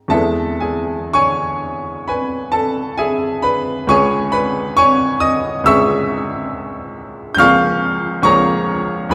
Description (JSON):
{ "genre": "classical, romantic character piece for solo piano", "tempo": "55-70 BPM", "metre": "4/4", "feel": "rubato", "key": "E major", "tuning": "A4 = 441 Hz", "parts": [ { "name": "bright upright piano", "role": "solo", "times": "0.0-9.1 s", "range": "C#2 to G6", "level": "-17 LUFS", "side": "equal", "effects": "none" } ], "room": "wet church reverb, RT60 3.5 s", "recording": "recorded in a church or concert hall", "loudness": "-16 LUFS", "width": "mono", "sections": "0.1-9.1 A section", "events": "none", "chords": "0.1 E; 3.9 C#m; 7.4 Bbm7/Db" }